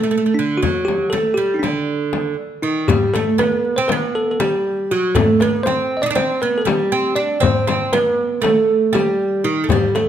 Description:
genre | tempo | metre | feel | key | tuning
Turkish makam ensemble | 238 BPM (eighths) | 9/8 | straight | unclear | A4 = 440 Hz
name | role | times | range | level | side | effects
bell-like tine electric piano | melody | 0.0-10.1 s | D4 to Eb5 | -19 LUFS | equal | none
oud | second line | 0.0-10.1 s | D3 to Eb4 | -20 LUFS | right 5 dB | none
frame drum | percussion | 0.6-10.1 s | none | -22 LUFS | left 7 dB | none
darbuka | percussion | 2.9-10.1 s | none | -23 LUFS | left 3 dB | none
room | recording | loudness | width
light reverb | none | -15 LUFS | side -10 dB against mid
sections
0.0-2.9 A section; 2.9-10.1 B section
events
none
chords
none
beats
0.13 0.38 | 0.63 0.88 1.13 1.39 1.64 1.89 2.14 2.39 2.64 | 2.89 3.14 3.39 3.64 3.90 4.15 4.40 4.65 4.90 | 5.15 5.41 5.66 5.91 6.16 6.41 6.67 6.92 7.17 | 7.42 7.68 7.93 8.18 8.44 8.69 8.94 9.20 9.45 | 9.70 9.95

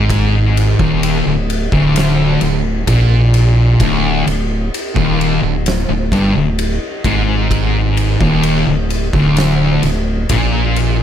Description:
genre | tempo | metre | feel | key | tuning
stoner and doom metal | 65 BPM | 4/4 | straight | unclear | A4 = 440 Hz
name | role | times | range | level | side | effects
thick fuzz guitar | riff | 0.0-11.0 s | D2 to Bb2 | -16 LUFS | left 6 dB | distortion
thick fuzz guitar | riff | 0.0-11.0 s | D2 to Bb2 | -17 LUFS | right 7 dB | distortion
rubbery square bass | bass | 0.0-11.0 s | D1 to Bb1 | -19 LUFS | equal | overdrive
oversized low-tuned drum kit | drums | 0.1-11.0 s | kick drum, ride cymbal, snare drum | -20 LUFS | equal | none
room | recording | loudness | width
light reverb, small room ambience | none | -12 LUFS | side -10 dB against mid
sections
0.0-11.0 A section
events
none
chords
none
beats
| 0.09 1.01 1.94 2.87 | 3.80 4.73 5.66 6.58 | 7.51 8.44 9.37 10.30

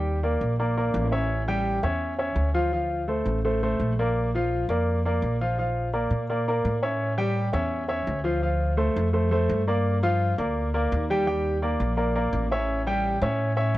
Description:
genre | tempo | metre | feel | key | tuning
latin, salsa | 168 BPM | 4/4 | straight | D minor | A4 = 440 Hz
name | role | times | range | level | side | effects
clear baby grand piano | accompaniment | 0.0-13.8 s | F3 to G5 | -25 LUFS | equal | none
upright bass | bass | 0.0-13.8 s | A1 to Bb2 | -26 LUFS | equal | none
room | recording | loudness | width
light reverb | worn, warbling old tape, cassette tape, warbly pitch drift | -23 LUFS | side -16 dB against mid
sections
0.0-8.4 A section; 8.4-13.8 A section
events
none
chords
0.0 Ebmaj7; 1.3 A7; 2.7 Dm7; 4.2 Bb; 5.6 Bbmaj7#11; 7.0 A7; 8.4 Dm7; 9.9 Gm7; 11.3 Ebmaj7; 12.7 A7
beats
0.23 0.59 0.94 | 1.30 1.66 2.01 2.37 | 2.73 3.08 3.44 3.80 | 4.16 4.51 4.87 5.23 | 5.58 5.94 6.30 6.65 | 7.01 7.37 7.72 8.08 | 8.43 8.79 9.14 9.50 | 9.85 10.21 10.56 10.92 | 11.27 11.63 11.98 12.33 | 12.69 13.04 13.39 13.75

